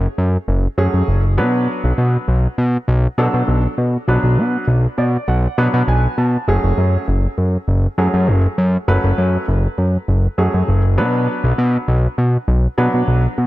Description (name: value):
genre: dance-pop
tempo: 100 BPM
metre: 4/4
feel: straight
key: unclear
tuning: A4 = 439 Hz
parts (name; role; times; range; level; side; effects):
- fat analog bass; bass; 0.0-13.5 s; F#1 to B2; -14 LUFS; equal; none
- warm baby grand piano; accompaniment; 0.8-13.2 s; F#3 to A5; -22 LUFS; right 1 dB; none
room: light reverb, studio reverb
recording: none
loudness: -14 LUFS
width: side -16 dB against mid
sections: 0.0-13.5 A section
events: grand piano fill 4.7-6.5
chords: 0.0 F#madd9; 1.4 Bm; 6.5 F#madd9; 11.0 Bm